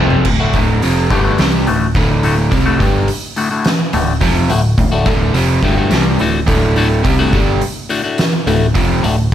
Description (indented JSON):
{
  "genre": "quiet-loud alternative rock",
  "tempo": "106 BPM",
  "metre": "4/4",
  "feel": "straight",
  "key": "unclear",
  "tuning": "A4 = 440 Hz",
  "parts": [
    { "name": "overdriven electric guitar", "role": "riff", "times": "0.0-9.3 s", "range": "D2 to C4", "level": "-16 LUFS", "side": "equal", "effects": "none" },
    { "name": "growling picked electric bass", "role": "bass", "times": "0.0-9.3 s", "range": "D1 to C2", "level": "-17 LUFS", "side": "equal", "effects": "overdrive" },
    { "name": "oversized low-tuned drum kit", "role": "drums", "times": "0.1-9.3 s", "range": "crash cymbal, hi-hat, kick drum, snare drum, toms", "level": "-17 LUFS", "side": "equal", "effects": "none" },
    { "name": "electric guitar at the edge of break-up", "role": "arpeggios", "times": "0.4-9.2 s", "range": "A2 to F#4", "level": "-19 LUFS", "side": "left 4 dB", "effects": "phaser" }
  ],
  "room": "small room reverb",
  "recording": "none",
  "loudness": "-12 LUFS",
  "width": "side -10 dB against mid",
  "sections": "0.3-9.3 A section",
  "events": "drum fill 0.0; half time 0.3-9.3",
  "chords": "0.3 D"
}